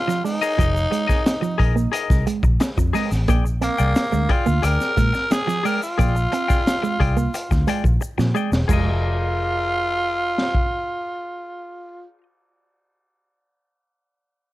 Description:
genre	funk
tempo	89 BPM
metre	4/4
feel	straight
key	F dorian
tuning	A4 = 442 Hz
part	growling tenor saxophone	melody	0.0-12.0 s	Bb3 to Bb4	-24 LUFS	equal	plate reverb
part	semi-hollow electric guitar	accompaniment	0.1-12.2 s	Ab4 to G5	-27 LUFS	left 7 dB	plate reverb
part	electric guitar with an envelope filter	riff	0.1-8.9 s	F3 to C4	-25 LUFS	right 6 dB	none
part	crunchy breakbeat drum kit	drums	0.1-10.7 s	crash cymbal, hi-hat, kick drum, snare drum	-22 LUFS	equal	none
part	egg shaker	percussion	0.1-9.0 s	none	-42 LUFS	left 4 dB	none
part	vintage muted fingered electric bass	bass	0.6-12.1 s	E1 to Bb2	-21 LUFS	equal	none
room	light reverb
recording	dark, warm production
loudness	-18 LUFS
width	side -16 dB against mid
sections	0.0-8.7 A section; 8.7-11.4 B section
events	drum fill 8.0-8.7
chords	0.0 Fm7; 3.3 Bb13; 8.7 Fm7

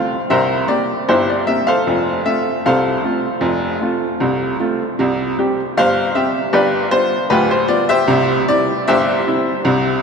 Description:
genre	ragtime piano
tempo	77 BPM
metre	2/4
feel	straight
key	F major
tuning	A4 = 440 Hz
part	bright upright piano	solo	0.0-10.0 s	D1 to F5	-14 LUFS	equal	none
room	wet cathedral reverb, RT60 6.7 s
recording	recorded in a church or concert hall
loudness	-14 LUFS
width	side -5 dB against mid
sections	0.0-10.0 A section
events	none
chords	0.3 C7; 1.9 F; 5.0 C5; 6.5 G7; 8.1 C

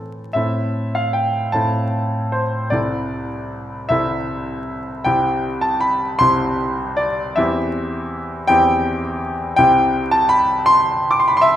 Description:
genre	classical, romantic nocturne for solo piano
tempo	42-56 BPM (dotted quarters)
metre	6/8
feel	rubato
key	A minor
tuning	A4 = 440 Hz
part	clear grand piano	solo	0.0-11.6 s	C2 to D6	-16 LUFS	equal	none
room	wet recital hall reverb, RT60 1.3 s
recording	minimal, uncompressed stereo recording, vinyl crackle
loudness	-16 LUFS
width	side -11 dB against mid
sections	0.4-11.6 A section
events	none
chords	0.4 Am; 2.7 Am/C; 5.1 C; 7.4 C/E; 9.6 C

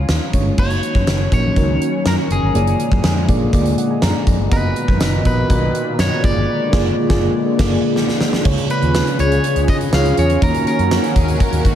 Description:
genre	1980s-style pop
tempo	122 BPM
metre	4/4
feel	straight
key	unclear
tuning	A4 = 440 Hz
part	electric guitar at the edge of break-up	melody	0.0-11.6 s	E#4 to E#5	-23 LUFS	left 1 dB	tape echo
part	mellow FM electric piano	accompaniment	0.0-11.8 s	C#3 to A#5	-21 LUFS	right 1 dB	chorus, tremolo
part	fretless electric bass	bass	0.0-11.8 s	F#1 to D#3	-19 LUFS	equal	none
part	gated 80s drum kit	drums	0.1-11.8 s	crash cymbal, hi-hat, kick drum, snare drum, tambourine	-19 LUFS	equal	none
part	sweeping resonant pad	sustained chords	0.6-11.8 s	A#2 to G#4	-22 LUFS	equal	chorus
part	clear studio violin section	second line	11.2-11.8 s	F#4 to A#4	-27 LUFS	left 3 dB	tape echo
room	moderate cathedral reverb, RT60 7.1 s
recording	dreamy mix soaked in reverb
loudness	-14 LUFS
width	side -10 dB against mid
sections	0.6-8.5 A section; 8.5-11.8 B section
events	FM electric piano fill 3.5-4.5; band accent 6.5-8.5; drum fill 8.0-8.5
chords	0.0 C#; 0.6 D#m7/F#; 2.5 A#7/F#; 4.5 Bmaj7/F#; 6.2 A#7/F#; 8.5 C#; 10.4 D#m7

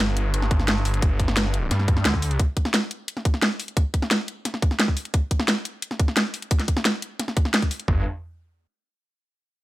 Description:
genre	dark technical drum and bass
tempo	175 BPM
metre	4/4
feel	straight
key	unclear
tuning	A4 = 439 Hz
part	snarling distorted saw bass	bass	0.0-2.4, 7.9-8.0 s	G1 to G2	-23 LUFS	equal	distortion, overdrive, sidechain pumping
part	drum and bass drum kit	drums	0.0-7.9 s	hi-hat, snare drum	-23 LUFS	equal	overdrive
part	drum and bass drum kit	drums	0.5-8.0 s	kick drum, toms	-21 LUFS	equal	overdrive
room	little or no reverb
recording	none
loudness	-21 LUFS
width	side -17 dB against mid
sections	0.0-7.9 A section; 7.9-9.3 B section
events	none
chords	none

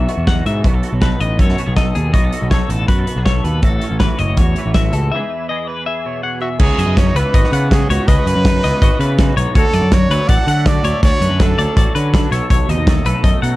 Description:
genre	math rock and midwest emo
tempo	162 BPM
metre	4/4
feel	straight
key	unclear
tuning	A4 = 440 Hz
part	twelve-string electric guitar	accompaniment	0.0-13.6 s	E2 to C#5	-24 LUFS	right 4 dB	ensemble chorus
part	clean electric guitar	arpeggios	0.0-13.6 s	G#4 to F#5	-22 LUFS	left 6 dB	harmonic tremolo
part	fuzz picked electric bass	bass	0.0-13.6 s	F#1 to D3	-17 LUFS	equal	overdrive
part	loose indie drum kit	drums	0.1-13.5 s	crash cymbal, hi-hat, kick drum, snare drum	-15 LUFS	equal	none
part	bright trumpet	melody	6.4-12.0 s	F#4 to F#5	-20 LUFS	right 2 dB	plate reverb
room	little or no reverb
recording	dark, warm production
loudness	-13 LUFS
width	side -17 dB against mid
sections	0.0-6.6 A section; 6.6-13.6 B section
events	break 5.1-6.6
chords	0.0 Emaj9; 0.6 B13; 3.6 A69; 5.1 Emaj7; 6.6 C#m11; 9.6 Dmaj7; 12.3 B7

